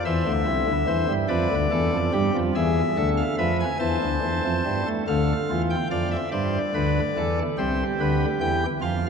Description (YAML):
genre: classical, baroque-style 3-part fugue for pipe organ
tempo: 48 BPM (dotted quarters)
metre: 6/8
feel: straight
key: D minor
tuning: A4 = 441 Hz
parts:
  - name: pipe organ, cornet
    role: solo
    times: 0.0-9.1 s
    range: C2 to A5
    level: -21 LUFS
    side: equal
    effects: none
room: wet church reverb, RT60 3.4 s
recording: dark, warm production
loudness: -21 LUFS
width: side -6 dB against mid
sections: 0.0-5.1 A section; 5.1-9.1 B section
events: none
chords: 0.1 Cadd9; 1.3 Bm7b5; 2.5 E7; 3.8 Am; 6.3 G; 7.6 C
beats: | 0.06 1.30 | 2.54 3.79 | 5.05 6.31 | 7.56 8.80